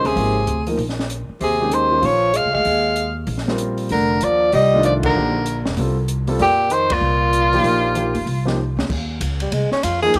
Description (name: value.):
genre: modal jazz.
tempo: 192 BPM.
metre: 4/4.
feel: swing 62% on 8ths.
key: Eb major.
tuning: A4 = 441 Hz.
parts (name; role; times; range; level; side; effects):
bright soprano saxophone; melody; 0.0-8.6 s; F4 to F5; -20 LUFS; equal; none.
warm tenor saxophone; second line; 0.0-10.2 s; Bb2 to Ab4; -25 LUFS; equal; none.
warm concert grand piano; accompaniment; 0.0-10.2 s; Eb3 to C5; -27 LUFS; equal; none.
upright bass; bass; 0.0-10.2 s; Fb1 to F2; -25 LUFS; equal; none.
open jazz drum kit; drums; 0.1-10.2 s; crash cymbal, hi-hat, kick drum, ride cymbal, snare drum; -31 LUFS; equal; none.
room: moderate spring reverb, RT60 2.4 s.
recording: none.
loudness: -19 LUFS.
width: mono.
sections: 0.0-8.9 A section; 8.9-10.2 B section.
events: band accent 5.0, 6.9; drum fill 8.6-8.9; tenor saxophone solo 8.9-10.2.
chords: 0.0 Eb13sus4; 3.9 F13sus4; 8.9 Eb13sus4.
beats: | 0.16 0.47 0.78 1.10 | 1.41 1.72 2.03 2.34 | 2.66 2.97 3.28 3.59 | 3.90 4.22 4.53 4.84 | 5.15 5.46 5.78 6.09 | 6.40 6.71 7.02 7.33 | 7.65 7.96 8.27 8.58 | 8.89 9.21 9.52 9.83 | 10.14.